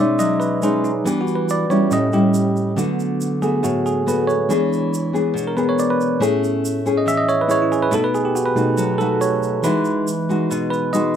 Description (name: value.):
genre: bossa nova.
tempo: 140 BPM.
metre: 4/4.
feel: straight.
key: unclear.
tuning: A4 = 440 Hz.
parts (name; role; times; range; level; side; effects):
bell-like tine electric piano; accompaniment; 0.0-11.2 s; A2 to E5; -19 LUFS; right 3 dB; none.
nylon-string guitar; accompaniment; 0.0-11.2 s; A2 to G#4; -20 LUFS; left 2 dB; none.
tube shaker; percussion; 0.2-11.2 s; none; -35 LUFS; right 5 dB; none.
room: little or no reverb.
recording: recorded outdoors, with no room sound.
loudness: -17 LUFS.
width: side -9 dB against mid.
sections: 0.0-11.2 A section.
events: tine electric piano solo 0.0-11.2.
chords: 0.0 B69; 1.1 Em7; 1.9 A7; 2.8 D6; 4.5 E7; 6.2 Amaj7; 7.9 B7; 9.6 Emaj9.